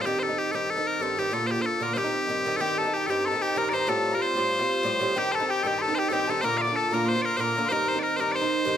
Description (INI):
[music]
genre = celtic folk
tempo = 188 BPM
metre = 4/4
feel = swing 54% on 8ths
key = C dorian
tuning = A4 = 438 Hz
[part]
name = loud bright bagpipes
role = melody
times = 0.0-8.8 s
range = G4 to F5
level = -26 LUFS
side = left 2 dB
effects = none
[part]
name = Irish bouzouki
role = accompaniment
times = 0.0-8.8 s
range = G2 to F4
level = -28 LUFS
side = right 2 dB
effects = none
[part]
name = bright reedy wooden whistle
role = second line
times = 2.6-8.5 s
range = G5 to D6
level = -30 LUFS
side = left 3 dB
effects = none
[sound]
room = moderate recital hall reverb, RT60 1.7 s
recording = close, detailed microphones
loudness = -23 LUFS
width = side -9 dB against mid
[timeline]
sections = 0.0-2.6 A section; 2.6-8.8 A section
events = none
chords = 0.1 Cm; 1.3 Bb; 2.0 Cm; 3.9 Fadd9; 5.2 Cm; 6.4 Bb; 7.7 Cm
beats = | 0.06 0.37 0.69 1.01 | 1.33 1.65 1.97 2.29 | 2.60 2.92 3.24 3.56 | 3.88 4.20 4.52 4.84 | 5.16 5.47 5.79 6.11 | 6.43 6.75 7.07 7.38 | 7.70 8.02 8.34 8.66